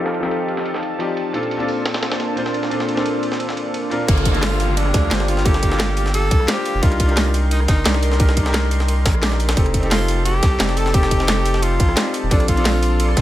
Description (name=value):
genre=liquid drum and bass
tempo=175 BPM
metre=4/4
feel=straight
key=unclear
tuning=A4 = 440 Hz
part: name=bright concert grand piano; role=accompaniment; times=0.0-13.2 s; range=Bb2 to D5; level=-24 LUFS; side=left 1 dB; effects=digital delay
part: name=lush unison pad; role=sustained chords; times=0.0-13.2 s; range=Bb3 to C6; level=-27 LUFS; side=equal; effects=chorus
part: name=breakbeat sampler-style drum kit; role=drums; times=0.1-13.2 s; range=hi-hat, ride cymbal, snare drum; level=-26 LUFS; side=equal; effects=high-pass filter on cymbals, low-pass filter on cymbals, high-pass filter on hats, low-pass filter on hats, high-pass filter on snare, low-pass filter on snare
part: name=saturated sub bass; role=bass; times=4.1-13.2 s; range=Eb1 to D2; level=-19 LUFS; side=equal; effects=none
part: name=electronic kick drum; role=drums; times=4.1-13.2 s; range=none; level=-17 LUFS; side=equal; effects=none
part: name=garage drum kit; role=drums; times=4.1-13.2 s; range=hi-hat, rim click, snare drum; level=-24 LUFS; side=equal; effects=none
part: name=downlifter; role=sound effects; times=4.1-6.8 s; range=none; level=-28 LUFS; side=equal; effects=none
part: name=clear tenor saxophone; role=melody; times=4.4-13.1 s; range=D4 to A4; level=-24 LUFS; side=left 1 dB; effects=tape echo
room=light reverb, digital ambience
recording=low-pass filter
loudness=-16 LUFS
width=side -14 dB against mid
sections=0.0-4.1 A section; 4.1-13.2 B section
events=filter sweep on grand piano 0.0-4.1; filter sweep 0.0-4.1; drop 4.1-13.2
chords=0.0 F9; 1.3 Bbmaj9; 4.1 Gm7; 6.8 Cm7; 9.6 F9; 12.3 Bbmaj9